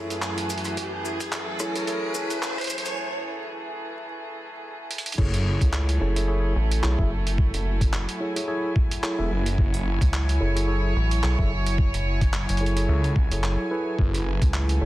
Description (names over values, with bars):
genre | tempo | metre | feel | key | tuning
glitch hop | 109 BPM | 4/4 | swing 56% on 16ths | F# minor | A4 = 443 Hz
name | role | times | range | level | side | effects
warm chamber string section | sustained chords | 0.0-14.9 s | F#2 to G#5 | -31 LUFS | right 1 dB | vintage 12-bit sampler grit, sidechain pumping
mellow tine electric piano | stabs | 0.0-14.9 s | E4 to E5 | -31 LUFS | equal | vintage 12-bit sampler grit, sidechain pumping, dub echo
riser | sound effects | 0.0-3.0 s | none | -33 LUFS | right 1 dB | none
boom bap sampler-style drum kit | drums | 0.1-14.8 s | crash cymbal, handclaps, hi-hat, rim click | -32 LUFS | right 1 dB | high-pass filter on snare, studio reverb, high-pass filter on hats, high-pass filter on cymbals
maracas | percussion | 0.1-3.0 s | none | -37 LUFS | left 3 dB | none
electronic kick drum | drums | 0.8-14.5 s | none | -23 LUFS | equal | high-pass filter on kick, studio reverb
phased detuned saw bass | bass | 5.2-5.6, 9.2-14.4 s | E1 to C#2 | -24 LUFS | equal | phaser
rubbery square bass | bass | 5.6-14.9 s | F#1 to C#2 | -23 LUFS | equal | tube saturation
room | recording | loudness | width
digital ambience | dense, heavily limited modern master, vinyl crackle, high-pass filter | -22 LUFS | side -16 dB against mid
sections
0.0-5.2 A section; 5.2-14.9 B section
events
build-up 0.0-5.2; riser 0.0-3.0; filter sweep on tine electric piano 0.0-5.2; filter sweep 0.0-5.2; break 3.0-5.2; drum fill 4.9; drop 5.2-14.9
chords
0.0 F#m9